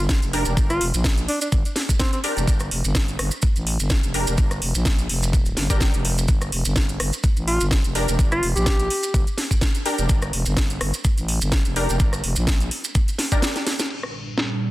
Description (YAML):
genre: bass house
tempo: 126 BPM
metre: 4/4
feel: swing 55% on 16ths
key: G minor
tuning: A4 = 440 Hz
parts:
  - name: growling FM bass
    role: bass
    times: 0.0-12.7 s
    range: F1 to Bb1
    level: -24 LUFS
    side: equal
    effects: overdrive, sidechain pumping
  - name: electronic kick drum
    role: drums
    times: 0.1-13.4 s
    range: none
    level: -20 LUFS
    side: equal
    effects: none
  - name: house drum kit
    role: drums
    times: 0.1-14.5 s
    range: crash cymbal, hi-hat, rim click, snare drum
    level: -26 LUFS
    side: equal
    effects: overdrive, low-pass filter on hats, low-pass filter on snare, low-pass filter on cymbals, low-pass filter on room
  - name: maracas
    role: percussion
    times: 0.1-13.9 s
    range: none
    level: -31 LUFS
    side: right 3 dB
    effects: none
  - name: orchestra-hit-like synth stab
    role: stabs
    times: 0.3-13.4 s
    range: D4 to Bb4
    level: -27 LUFS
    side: equal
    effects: built-in reverb, phaser, sidechain pumping, digital delay
  - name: breathy alto saxophone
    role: melody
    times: 0.7-2.2, 7.5-9.2 s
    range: C4 to G4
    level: -25 LUFS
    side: equal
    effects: vintage 12-bit sampler grit, digital delay
  - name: sweeping resonant pad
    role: sustained chords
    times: 13.9-14.7 s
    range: Bb2 to D4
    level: -27 LUFS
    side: right 2 dB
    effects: chorus, sidechain pumping
room: little or no reverb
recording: dense, heavily limited modern master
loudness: -19 LUFS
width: side -17 dB against mid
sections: 0.0-13.9 A section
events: drum fill 13.5-13.9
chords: 0.0 Gm